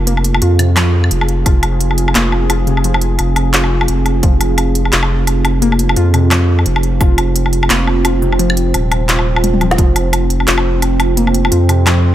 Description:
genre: half-time drum and bass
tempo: 173 BPM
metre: 4/4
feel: swing 59% on 16ths, half-time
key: F minor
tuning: A4 = 441 Hz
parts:
  - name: deep dark ambient pad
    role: sustained chords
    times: 0.0-12.1 s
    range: C4 to Bb4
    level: -19 LUFS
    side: right 3 dB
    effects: chorus, built-in reverb, sidechain pumping
  - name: saturated sub bass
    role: bass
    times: 0.0-12.1 s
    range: Eb1 to F2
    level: -14 LUFS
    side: equal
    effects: none
  - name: warbly dusty pluck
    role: arpeggios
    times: 0.1-12.0 s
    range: C3 to F4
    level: -21 LUFS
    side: left 3 dB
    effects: chorus, phaser, dub echo
  - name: organic electronic drum kit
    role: drums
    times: 0.1-11.9 s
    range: handclaps, hi-hat, snare drum, toms, woodblock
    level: -17 LUFS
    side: left 1 dB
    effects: none
  - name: electronic kick drum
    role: drums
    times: 1.5, 4.2-4.3, 7.0-7.1, 9.8-9.9 s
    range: none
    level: -12 LUFS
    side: equal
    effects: none
room: light reverb, digital ambience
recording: none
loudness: -11 LUFS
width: side -12 dB against mid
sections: 0.0-12.1 A section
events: drum fill 9.4-9.8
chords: 0.0 Fm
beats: | 0.07 0.42 0.77 1.11 | 1.46 1.80 2.15 2.50 | 2.85 3.19 3.54 3.89 | 4.23 4.58 4.93 5.27 | 5.62 5.97 6.31 6.66 | 7.01 7.35 7.70 8.05 | 8.39 8.74 9.09 9.44 | 9.78 10.13 10.48 10.82 | 11.17 11.52 11.86

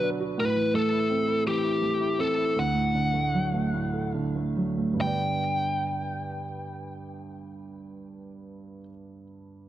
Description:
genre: six-eight pop ballad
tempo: 46-56 BPM (dotted quarters)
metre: 6/8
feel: straight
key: G major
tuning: A4 = 439 Hz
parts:
  - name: biting lead guitar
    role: melody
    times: 0.0-8.8 s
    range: G4 to G5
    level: -28 LUFS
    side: left 2 dB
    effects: overdrive, tape echo
  - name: warm concert grand piano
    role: accompaniment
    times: 0.0-9.7 s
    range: D2 to D5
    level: -28 LUFS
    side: right 3 dB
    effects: none
room: light reverb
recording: dark, warm production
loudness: -24 LUFS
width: side -12 dB against mid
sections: 0.0-5.0 A section; 5.0-9.7 B section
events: slowing down 0.4-5.0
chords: 0.4 Am; 2.6 D; 5.0 G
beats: | 0.38 1.45 | 2.56 3.74 | 4.99 6.29 | 7.59 8.88

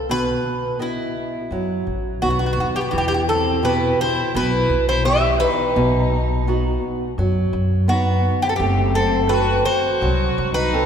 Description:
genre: greek folk, Greek bouzouki band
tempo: 85 BPM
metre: 4/4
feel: straight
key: E harmonic minor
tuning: A4 = 442 Hz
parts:
  - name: Greek bouzouki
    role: melody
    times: 0.0-10.9 s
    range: E4 to E5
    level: -21 LUFS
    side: equal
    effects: none
  - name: upright bass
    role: bass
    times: 0.0-10.9 s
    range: F#1 to F#2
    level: -22 LUFS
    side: equal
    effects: none
  - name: flamenco guitar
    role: accompaniment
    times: 0.1-10.9 s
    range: B2 to D#5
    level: -23 LUFS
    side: right 1 dB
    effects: none
  - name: rich violin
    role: second line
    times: 2.2-10.9 s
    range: B3 to G4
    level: -26 LUFS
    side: left 2 dB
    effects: none
room: wet church reverb, RT60 2.9 s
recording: recorded in a church or concert hall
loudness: -17 LUFS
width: side -8 dB against mid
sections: 0.0-2.9 A section; 2.9-10.9 B section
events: none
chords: 0.1 B; 2.9 Em; 5.8 B; 8.6 F#dim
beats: | 0.09 0.80 1.50 2.21 | 2.92 3.63 4.34 5.05 | 5.76 6.47 7.18 7.89 | 8.60 9.31 10.02 10.73

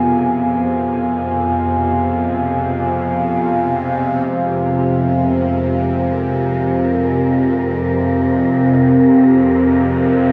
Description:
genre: dark ambient drone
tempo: free time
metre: none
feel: none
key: F minor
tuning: A4 = 440 Hz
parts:
  - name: dark analog pad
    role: sustained chords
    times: 0.0-10.3 s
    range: Cb4 to Ab5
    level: -18 LUFS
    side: equal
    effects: subtle chorus, shimmer reverb
  - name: gamelan-type bronze metallophone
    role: arpeggios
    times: 0.0-9.9 s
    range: none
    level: barely audible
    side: none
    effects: none
  - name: bowed-like drone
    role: drone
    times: 0.0-10.3 s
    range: F2 to C3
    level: -21 LUFS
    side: equal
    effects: built-in reverb, phaser
  - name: wind-like tuned noise texture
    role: texture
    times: 0.0-10.3 s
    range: Bb4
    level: -29 LUFS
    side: equal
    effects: built-in reverb, shimmer reverb
room: wet huge ambient reverb, RT60 8.3 s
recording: in a vast, echoing space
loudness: -16 LUFS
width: mono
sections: 0.0-4.3 A section; 4.3-10.3 B section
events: none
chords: 0.0 Abm; 4.3 Fm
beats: free time

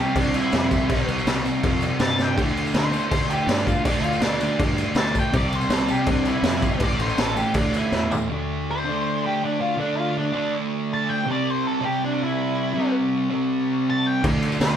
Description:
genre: garage rock duo or trio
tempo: 162 BPM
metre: 4/4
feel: straight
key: D minor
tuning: A4 = 440 Hz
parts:
  - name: octave-fuzz lead guitar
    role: melody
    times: 0.0-14.8 s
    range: D4 to A5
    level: -26 LUFS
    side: equal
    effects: distortion
  - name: fuzz guitar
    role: riff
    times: 0.0-14.8 s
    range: A2 to D4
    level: -24 LUFS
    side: right 1 dB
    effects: distortion
  - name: fuzz fingered electric bass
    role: bass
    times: 0.0-8.2, 14.2-14.8 s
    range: A1 to G2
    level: -29 LUFS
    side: equal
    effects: overdrive
  - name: tambourine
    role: percussion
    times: 0.1-8.3, 14.2-14.8 s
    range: none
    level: -43 LUFS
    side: left 11 dB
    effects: none
  - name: raw garage drum kit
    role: drums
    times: 0.2-8.2, 14.2-14.7 s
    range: crash cymbal, kick drum, snare drum, toms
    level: -23 LUFS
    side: equal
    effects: none
room: light reverb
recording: band playing live in one room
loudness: -20 LUFS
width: side -9 dB against mid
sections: 0.0-8.3 A section; 8.3-14.8 A section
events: drum fill 2.2, 7.9-8.3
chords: 0.0 C; 2.4 D5; 5.3 C; 6.8 A5; 8.3 D5; 11.3 C; 14.2 D5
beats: 0.16 0.53 | 0.90 1.27 1.64 2.01 | 2.38 2.74 3.11 3.48 | 3.85 4.22 4.59 4.96 | 5.33 5.70 6.07 6.44 | 6.81 7.18 7.55 7.92 | 8.29 8.66 9.04 9.41 | 9.78 10.15 10.52 10.89 | 11.27 11.64 12.01 12.38 | 12.75 13.12 13.49 13.87 | 14.24 14.61

